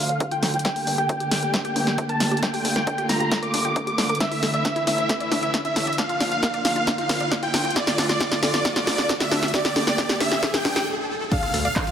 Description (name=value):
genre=uplifting trance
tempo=135 BPM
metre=4/4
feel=straight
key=D minor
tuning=A4 = 440 Hz
part: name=big supersaw lead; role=melody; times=0.0-11.9 s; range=D5 to D6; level=-26 LUFS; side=right 1 dB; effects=sidechain pumping, low-pass filter, tape echo
part: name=plucky unison lead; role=second line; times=0.0-11.9 s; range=D5 to D6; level=-31 LUFS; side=equal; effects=none
part: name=dark chamber string section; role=sustained chords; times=0.0-10.9 s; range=D3 to G4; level=-28 LUFS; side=equal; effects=sidechain pumping
part: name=fat analog bass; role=bass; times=0.0-11.7 s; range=G1 to D2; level=-33 LUFS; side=equal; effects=sidechain pumping, high-pass filter
part: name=riser and impact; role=sound effects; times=0.8-11.9 s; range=none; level=-34 LUFS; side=equal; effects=none
part: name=wide unison pluck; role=arpeggios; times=0.1-11.9 s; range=D4 to D5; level=-31 LUFS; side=left 2 dB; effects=sidechain pumping, tape echo
part: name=punchy analog drum machine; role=drums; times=0.1-11.9 s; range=congas, crash cymbal, handclaps, hi-hat, snare drum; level=-24 LUFS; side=equal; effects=none
part: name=electronic kick drum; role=drums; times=0.2-11.8 s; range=none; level=-28 LUFS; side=equal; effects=high-pass filter on kick
room=moderate lush hall reverb, RT60 2.4 s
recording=none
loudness=-20 LUFS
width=side -8 dB against mid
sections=0.0-11.3 A section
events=build-up 0.0-11.3; drum fill 0.0-10.9; filter sweep on supersaw synth 0.0-11.3; filter sweep on synth arpeggio sound 0.0-11.3; stop 10.9-11.3; impact 11.3-11.9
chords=0.0 Dm; 0.6 Gmadd9; 4.2 Asus4; 6.0 Bb; 7.8 Dm; 9.5 Gmadd9; 11.3 Dm